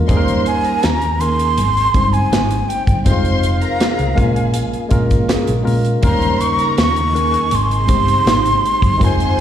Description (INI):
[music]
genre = lush 1970s-style soul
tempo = 81 BPM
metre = 4/4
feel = straight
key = unclear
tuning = A4 = 443 Hz
[part]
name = tine electric piano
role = accompaniment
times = 0.0-9.4 s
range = Eb3 to C5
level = -21 LUFS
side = left 1 dB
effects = medium stereo tremolo, slapback echo
[part]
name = warm symphonic string section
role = second line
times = 0.1-9.4 s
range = Ab4 to C6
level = -26 LUFS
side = equal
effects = slapback echo
[part]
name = hollow-body short-scale fingered electric bass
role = bass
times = 0.1-9.4 s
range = F1 to Bb2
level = -18 LUFS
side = equal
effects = none
[part]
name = modern studio drum kit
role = drums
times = 0.1-9.4 s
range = hi-hat, kick drum, snare drum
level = -19 LUFS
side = equal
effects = none
[part]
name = breathy jazz flute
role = melody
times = 0.5-9.4 s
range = F5 to Db6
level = -18 LUFS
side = right 1 dB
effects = slapback echo
[part]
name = electric guitar through a small old amp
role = riff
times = 0.8-8.5 s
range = Db4 to C5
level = -26 LUFS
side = right 5 dB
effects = phaser, slapback echo
[part]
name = string machine, full ensemble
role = sustained chords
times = 6.0-9.4 s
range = C3 to F4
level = -26 LUFS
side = right 1 dB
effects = phaser, ensemble chorus
[sound]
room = small room ambience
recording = live gig heard through the venue's PA, recital hall reverb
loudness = -13 LUFS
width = side -10 dB against mid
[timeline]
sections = 0.0-9.4 A section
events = none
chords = 0.1 Eb7; 1.6 Abmaj7; 3.1 Fm7; 4.2 Bbm7; 6.0 Eb7; 7.5 Abmaj7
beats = | 0.10 0.84 1.58 2.33 | 3.07 3.81 4.55 5.30 | 6.04 6.78 7.53 8.27 | 9.01